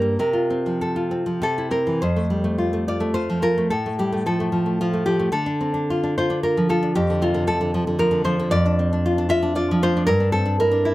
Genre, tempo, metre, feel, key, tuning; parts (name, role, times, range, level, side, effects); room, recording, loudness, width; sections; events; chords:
romantic piece for solo classical guitar; 96-118 BPM; 3/4; rubato; F major; A4 = 440 Hz
nylon-string guitar; solo; 0.0-10.9 s; F2 to E5; -19 LUFS; equal
light reverb; close, detailed microphones; -19 LUFS; side -17 dB against mid
0.0-2.0 A section; 2.0-10.9 B section
0.2 F/C; 1.4 C; 2.0 F; 3.7 F/A; 5.3 Dm; 7.0 Dm/F; 10.1 Em7b5/G